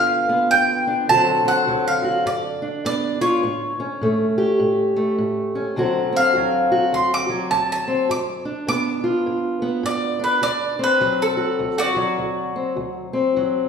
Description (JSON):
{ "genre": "acoustic country blues, solo or duo", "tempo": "103 BPM", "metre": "4/4", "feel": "swing 62% on 8ths", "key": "D mixolydian", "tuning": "A4 = 441 Hz", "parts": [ { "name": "mandolin", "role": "melody", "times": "0.0-12.9 s", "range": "F#4 to D6", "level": "-20 LUFS", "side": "right 1 dB", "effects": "none" }, { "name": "fingerpicked steel-string acoustic guitar", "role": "accompaniment", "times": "0.0-13.7 s", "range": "D2 to G4", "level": "-21 LUFS", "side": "left 1 dB", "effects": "none" } ], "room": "wet recital hall reverb, RT60 1.4 s", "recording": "heard from further back in the room", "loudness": "-18 LUFS", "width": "side -6 dB against mid", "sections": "0.0-5.8 A section; 5.8-13.7 B section", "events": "mandolin solo 5.8-13.7", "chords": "0.0 G7; 1.1 D7; 2.3 G7; 3.4 A7; 5.8 D7; 8.1 G7; 10.4 D7" }